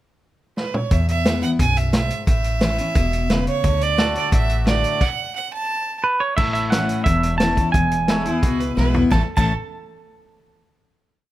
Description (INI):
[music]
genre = honky-tonk and classic country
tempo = 176 BPM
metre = 4/4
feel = straight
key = A major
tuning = A4 = 443 Hz
[part]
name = clear fiddle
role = second line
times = 0.6-6.0, 8.3-9.5 s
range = E4 to A5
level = -24 LUFS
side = right 5 dB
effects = none
[part]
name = vintage drum kit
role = drums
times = 0.6-9.5 s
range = crash cymbal, hi-hat, kick drum, snare drum, toms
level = -21 LUFS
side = equal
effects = none
[part]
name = picked steel-string acoustic guitar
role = accompaniment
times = 0.9-9.5 s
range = E2 to F#4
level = -23 LUFS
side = left 3 dB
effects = none
[part]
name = upright bass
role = bass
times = 0.9-9.5 s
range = E1 to E2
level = -23 LUFS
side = equal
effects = none
[part]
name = pedal steel guitar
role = sustained chords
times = 4.0-9.1 s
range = E4 to D5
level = -31 LUFS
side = left 1 dB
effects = none
[part]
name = pedal steel guitar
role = melody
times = 6.0-9.5 s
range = B4 to A5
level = -22 LUFS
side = right 3 dB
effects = none
[sound]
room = little or no reverb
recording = none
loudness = -17 LUFS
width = side -14 dB against mid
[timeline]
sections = 0.0-0.9 pickup bar; 0.9-6.4 interlude; 6.4-9.1 tag; 9.1-10.5 final chord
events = drum fill 0.6-0.9, 8.8-9.1; fiddle solo 0.9-6.4; stop 5.0-6.4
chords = 0.0 N.C.; 0.9 E; 2.3 A; 3.6 D; 5.0 N.C.; 6.4 A; 7.7 E; 9.1 A